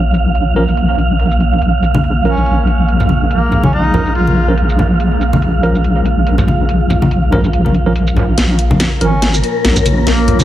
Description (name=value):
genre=deep dubstep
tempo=142 BPM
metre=4/4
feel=swing 56% on 16ths, half-time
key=Bb minor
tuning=A4 = 440 Hz
part: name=deep dark ambient pad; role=sustained chords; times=0.0-10.4 s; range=Bb3 to Db5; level=-22 LUFS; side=right 1 dB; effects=chorus, built-in reverb
part: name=wobble bass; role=bass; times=0.0-10.4 s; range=Ab1 to Bb1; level=-13 LUFS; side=equal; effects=chorus
part: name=wind-like tuned noise texture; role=texture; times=0.0-10.4 s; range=Bb4 to F5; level=-20 LUFS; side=right 3 dB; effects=built-in reverb
part: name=garage drum kit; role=drums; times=0.1-10.4 s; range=hi-hat, shaker, snare drum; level=-19 LUFS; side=equal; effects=low-pass filter on hats, low-pass filter on perc, low-pass filter on snare
part: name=tine electric piano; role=stabs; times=0.6-9.1 s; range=F3 to Bb4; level=-21 LUFS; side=right 2 dB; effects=medium stereo tremolo, low-pass filter, dub echo
part: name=congas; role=percussion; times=1.9-10.4 s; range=none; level=-17 LUFS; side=left 1 dB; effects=none
part: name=clear duduk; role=melody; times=2.3-4.6, 9.0-10.4 s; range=F3 to F4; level=-21 LUFS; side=equal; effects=dub echo
room=light reverb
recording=heavily compressed radio sound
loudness=-11 LUFS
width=side -13 dB against mid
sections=0.0-8.4 A section; 8.4-10.4 B section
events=build-up 8.4-10.4; drum fill 8.4-10.4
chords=0.0 Bbm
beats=0.35 0.77 1.20 | 1.62 2.04 2.46 2.88 | 3.31 3.73 4.15 4.58 | 5.00 5.42 5.84 6.27 | 6.69 7.11 7.53 7.96 | 8.38 8.80 9.22 9.65 | 10.07